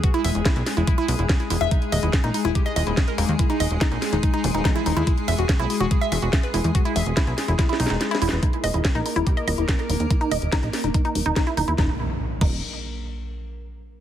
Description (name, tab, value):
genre	psychedelic trance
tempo	143 BPM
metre	4/4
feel	straight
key	unclear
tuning	A4 = 440 Hz
part	evolving wavetable pad	sustained chords	0.0-11.8 s	Ab3 to Bb4	-29 LUFS	left 3 dB	chorus, built-in reverb, sidechain pumping
part	woody wave-folded pluck	riff	0.0-12.6 s	Eb4 to E5	-26 LUFS	moving between left 4 dB and right 5 dB	chorus, auto-pan, sidechain pumping, digital delay
part	drum and bass drum kit	drums	0.0-12.5 s	crash cymbal, hi-hat, snare drum	-28 LUFS	equal	none
part	electronic kick drum	drums	0.0-12.5 s	none	-21 LUFS	equal	none
part	plucky analog bass	bass	0.2-12.6 s	Eb1 to E2	-24 LUFS	equal	none
part	metallic wobble bass	second line	3.2-3.3 s	Bb3	-35 LUFS	left 4 dB	chorus, sidechain pumping, high-pass filter, digital delay
part	zap and impact	sound effects	4.4-4.5, 11.8-13.5 s	none	-31 LUFS	equal	none
room	digital ambience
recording	heavily compressed radio sound, multiband compression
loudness	-20 LUFS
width	side -11 dB against mid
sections	0.0-8.4 A section; 8.4-11.8 B section; 11.8-13.5 C section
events	drop 0.0-8.4; drum fill 7.6-8.4; kick drops out 8.0-8.4; filter sweep on analog synth bass 8.4-11.8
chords	0.0 E5; 1.7 Eb5; 5.1 E5; 8.4 Eb5; 11.8 N.C.